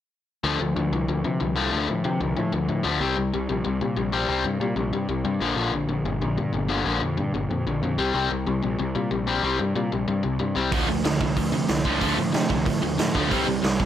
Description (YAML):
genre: punk rock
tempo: 187 BPM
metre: 4/4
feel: straight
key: D minor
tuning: A4 = 440 Hz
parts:
  - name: overdriven semi-hollow guitar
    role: riff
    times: 0.4-13.9 s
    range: Bb2 to C4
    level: -24 LUFS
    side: left 4 dB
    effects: none
  - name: fuzz picked electric bass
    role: bass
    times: 0.4-13.9 s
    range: G1 to C3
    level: -28 LUFS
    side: right 2 dB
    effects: overdrive
  - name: sludgy distorted guitar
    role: riff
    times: 10.7-13.9 s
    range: C3 to D4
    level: -26 LUFS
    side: right 14 dB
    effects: overdrive
  - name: raw garage drum kit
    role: drums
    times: 10.7-13.9 s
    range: hi-hat, kick drum, snare drum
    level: -26 LUFS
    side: right 2 dB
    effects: none
room: little or no reverb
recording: none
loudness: -22 LUFS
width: side -10 dB against mid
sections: 0.4-13.9 A section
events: none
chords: 0.4 Dm; 3.0 C5; 5.4 Bb; 8.0 C5; 10.7 Dm; 13.3 C5